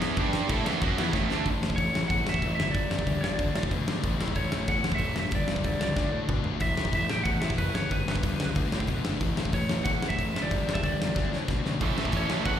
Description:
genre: punk rock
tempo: 186 BPM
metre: 4/4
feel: straight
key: A mixolydian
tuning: A4 = 440 Hz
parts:
  - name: cranked stack guitar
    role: riff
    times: 0.0-1.5, 11.8-12.6 s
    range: A2 to A4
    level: -30 LUFS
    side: right 12 dB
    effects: overdrive, slapback echo
  - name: overdriven semi-hollow guitar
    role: riff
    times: 0.0-1.5 s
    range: A2 to A4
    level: -35 LUFS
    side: equal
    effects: slapback echo
  - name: sludgy distorted guitar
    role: riff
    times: 0.0-12.6 s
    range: G2 to A4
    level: -32 LUFS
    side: left 8 dB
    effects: overdrive, slapback echo
  - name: fuzz picked electric bass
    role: bass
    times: 0.0-12.6 s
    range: F#1 to B2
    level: -32 LUFS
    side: right 1 dB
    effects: overdrive
  - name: big rock drum kit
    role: drums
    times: 0.0-12.5 s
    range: crash cymbal, hi-hat, kick drum, snare drum, toms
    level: -29 LUFS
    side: equal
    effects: none
  - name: lightly driven lead guitar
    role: melody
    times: 1.8-12.6 s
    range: B4 to G5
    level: -32 LUFS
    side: right 2 dB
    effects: slapback echo, digital delay
room: little or no reverb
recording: live gig heard through the venue's PA, recital hall reverb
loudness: -25 LUFS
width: side -10 dB against mid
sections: 0.0-1.5 A section; 1.5-12.6 B section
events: drum fill 1.1-1.5, 6.0-6.6, 11.2-11.8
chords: 0.2 G5; 0.5 A; 2.6 G5; 3.4 D5; 4.0 A; 5.2 G5; 6.0 D5; 6.6 A5; 7.8 G; 8.6 D5; 9.2 A; 10.3 G5; 11.2 D5; 11.8 A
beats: | 0.17 0.50 0.82 1.14 | 1.46 1.78 2.10 2.43 | 2.75 3.07 3.39 3.72 | 4.04 4.36 4.68 5.00 | 5.33 5.65 5.97 6.30 | 6.62 6.94 7.27 7.59 | 7.92 8.24 8.56 8.89 | 9.21 9.54 9.86 10.19 | 10.51 10.84 11.16 11.49 | 11.81 12.14 12.46

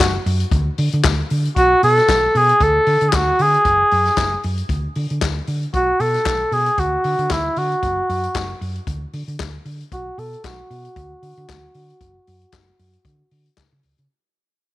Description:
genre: disco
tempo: 115 BPM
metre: 4/4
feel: swing 56% on 16ths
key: unclear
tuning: A4 = 440 Hz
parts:
  - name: mellow cor anglais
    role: melody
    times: 0.0-13.5 s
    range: E4 to A4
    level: -16 LUFS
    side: equal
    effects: low-pass filter
  - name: hollow-body short-scale fingered electric bass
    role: bass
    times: 0.0-14.1 s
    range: F#1 to D3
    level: -23 LUFS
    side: equal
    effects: none
  - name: vintage drum kit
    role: drums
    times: 0.0-14.1 s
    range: handclaps, hi-hat, kick drum, snare drum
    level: -23 LUFS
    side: left 3 dB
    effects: none
room: studio reverb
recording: 1960s-style stereo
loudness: -15 LUFS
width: side -16 dB against mid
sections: 0.0-14.1 A section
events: filter sweep on cor anglais 0.0-14.1; fade-out 0.7-14.1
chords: 0.0 N.C.; 1.6 F#madd11/B; 2.6 D5; 3.6 F#sus2; 4.7 N.C.; 5.7 F#madd11/B; 6.8 D; 7.8 N.C.; 9.9 B5; 11.0 D; 12.0 N.C.; 13.0 D; 13.6 N.C.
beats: 0.52 1.04 | 1.56 2.08 2.60 3.13 | 3.65 4.17 4.69 5.21 | 5.74 6.26 6.78 7.30 | 7.83 8.35 8.87 9.39 | 9.91 10.44 10.96 11.48 | 12.00 12.52 13.04 13.57

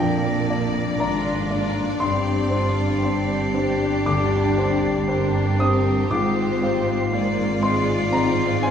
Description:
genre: cinematic, emotional film score for orchestra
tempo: 59 BPM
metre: 4/4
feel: rubato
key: unclear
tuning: A4 = 440 Hz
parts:
  - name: rich studio violin section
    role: melody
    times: 0.0-8.7 s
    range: Bb4 to D5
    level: -32 LUFS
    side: left 3 dB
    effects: none
  - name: rich studio violin section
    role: second line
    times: 0.0-8.7 s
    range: D4 to G4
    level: -31 LUFS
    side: left 2 dB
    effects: none
  - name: silver concert flute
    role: second line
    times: 0.0-8.7 s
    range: Bb6 to C7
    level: -32 LUFS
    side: equal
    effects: none
  - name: warm clarinet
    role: second line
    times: 0.0-8.7 s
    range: D4 to F4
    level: -33 LUFS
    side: left 1 dB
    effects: none
  - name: rich studio viola section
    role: accompaniment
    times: 0.0-8.7 s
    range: Ab3 to D4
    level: -29 LUFS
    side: right 2 dB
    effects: none
  - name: warm baby grand piano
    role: accompaniment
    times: 0.0-8.7 s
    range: D2 to Eb6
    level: -26 LUFS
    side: left 1 dB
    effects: none
  - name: dark French horn section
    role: sustained chords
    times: 0.0-8.7 s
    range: C4 to G4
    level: -27 LUFS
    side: left 3 dB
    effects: none
  - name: concert harp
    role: arpeggios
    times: 0.0-8.7 s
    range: G2 to C6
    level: -29 LUFS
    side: left 3 dB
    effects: none
  - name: rich studio double bass section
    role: bass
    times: 0.0-8.7 s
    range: G1 to Bb1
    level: -30 LUFS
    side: right 4 dB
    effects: none
  - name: warm studio cello section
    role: bass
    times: 0.0-8.7 s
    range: G2 to Bb2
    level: -26 LUFS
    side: right 2 dB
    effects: none
room: wet scoring stage reverb, RT60 1.8 s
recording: heard from further back in the room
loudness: -19 LUFS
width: side -8 dB against mid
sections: 0.0-8.7 A section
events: none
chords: 0.0 Bb6; 2.0 Gsus4; 6.1 Fm/Ab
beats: 0.00 1.01 | 2.02 3.04 4.06 5.09 | 6.11 7.13 8.14

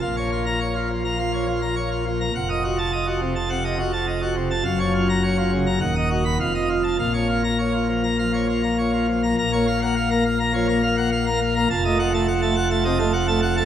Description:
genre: classical, organ toccata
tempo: 104 BPM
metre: 4/4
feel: straight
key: Bb minor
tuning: A4 = 441 Hz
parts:
  - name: pipe organ, plenum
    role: solo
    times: 0.0-13.7 s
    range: D#1 to B5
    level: -19 LUFS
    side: equal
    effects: none
room: wet scoring stage reverb, RT60 1.6 s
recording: none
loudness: -19 LUFS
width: side -10 dB against mid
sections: 0.0-9.4 A section; 9.4-13.7 A section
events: none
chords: 0.0 Bbm; 2.4 F7b9; 4.7 Gbmaj7; 5.8 B/D#; 6.4 F7; 7.0 Bbm; 11.7 F7b9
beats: | 0.03 0.61 1.19 1.77 | 2.35 2.93 3.51 4.08 | 4.66 5.24 5.82 6.40 | 6.99 7.58 8.18 8.78 | 9.37 9.96 10.54 11.12 | 11.70 12.27 12.85 13.42

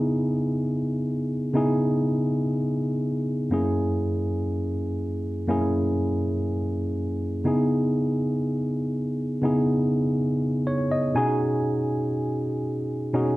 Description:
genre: disco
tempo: free time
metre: none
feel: none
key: C# dorian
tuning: A4 = 440 Hz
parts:
  - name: tine electric piano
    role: solo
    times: 0.0-13.4 s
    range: F#2 to G#5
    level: -23 LUFS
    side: equal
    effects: overdrive, slapback echo
room: light reverb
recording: none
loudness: -23 LUFS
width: side -18 dB against mid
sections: 0.0-7.5 A section; 7.5-13.4 B section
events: tine electric piano fill 10.4-11.4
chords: 0.0 C#m9; 3.5 F#9; 7.5 C#m9; 11.2 B69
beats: free time

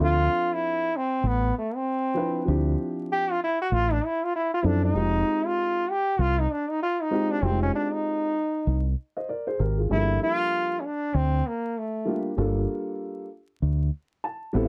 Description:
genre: hip hop, jazz-hop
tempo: 97 BPM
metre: 4/4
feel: swing 60% on 16ths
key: G dorian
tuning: A4 = 440 Hz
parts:
  - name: bright trombone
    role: melody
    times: 0.0-12.3 s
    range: A3 to G4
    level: -28 LUFS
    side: equal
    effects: none
  - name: dark baby grand piano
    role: accompaniment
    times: 0.0-14.7 s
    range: F3 to A5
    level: -31 LUFS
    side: equal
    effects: none
  - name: deep dub fingered electric bass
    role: bass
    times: 0.0-14.7 s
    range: F1 to F#2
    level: -26 LUFS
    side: equal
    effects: none
room: light reverb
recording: dry, close 1970s-style studio recording, vinyl crackle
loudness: -26 LUFS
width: mono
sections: 0.0-9.9 A section; 9.9-14.7 B section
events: trombone solo 0.0-9.9; grand piano fill 13.9-14.7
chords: 0.0 Dm9; 5.0 Fm9; 9.9 Gm9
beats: | 0.01 0.63 1.24 1.86 | 2.48 3.10 3.72 4.34 | 4.96 5.57 6.19 6.81 | 7.43 8.05 8.67 9.29 | 9.90 10.52 11.14 11.76 | 12.38 13.00 13.62 14.23

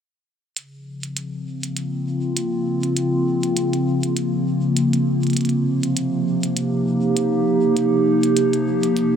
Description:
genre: IDM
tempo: 100 BPM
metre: 4/4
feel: swing 56% on 16ths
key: Bb minor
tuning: A4 = 440 Hz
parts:
  - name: warbly tape-like pad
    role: sustained chords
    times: 1.0-9.2 s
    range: C3 to G4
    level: -18 LUFS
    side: equal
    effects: chorus, built-in reverb
  - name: electronic hi-hat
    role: drums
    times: 0.6-9.1 s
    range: none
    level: -27 LUFS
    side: right 1 dB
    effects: none
room: wet huge ambient reverb, RT60 7.6 s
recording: dreamy mix soaked in reverb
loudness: -18 LUFS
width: side -8 dB against mid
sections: 0.6-9.2 A section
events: none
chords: 0.6 Bbmadd9; 5.4 Cm7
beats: | 0.57 1.17 1.77 2.37 | 2.97 3.57 4.17 4.77 | 5.37 5.97 6.57 7.17 | 7.77 8.37 8.97

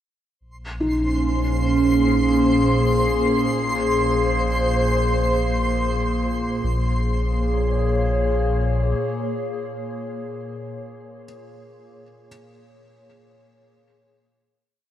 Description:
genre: ambient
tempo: free time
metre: none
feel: none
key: Bb minor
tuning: A4 = 440 Hz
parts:
  - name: warbly tape-like pad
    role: sustained chords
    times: 1.0-10.5 s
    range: Bb2 to Db5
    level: -22 LUFS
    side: equal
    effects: chorus, built-in reverb, phaser
  - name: warm sub bass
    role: bass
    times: 0.4-8.9 s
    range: Bb1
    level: -24 LUFS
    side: equal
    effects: none
  - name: twinkling granular texture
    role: texture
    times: 0.9-6.7 s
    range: C5 to C6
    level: -26 LUFS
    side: equal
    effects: built-in reverb
  - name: felt-muted upright piano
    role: arpeggios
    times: 0.8-12.3 s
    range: Eb4 to F4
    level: -30 LUFS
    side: equal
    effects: none
room: wet huge ambient reverb, RT60 8.3 s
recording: none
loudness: -19 LUFS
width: side -11 dB against mid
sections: 0.4-6.7 A section; 6.7-9.8 final chord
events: fade-out on felt piano 0.4-6.7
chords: 0.4 Bbm7; 3.5 Abadd9/Bb; 6.7 Bbm7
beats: free time

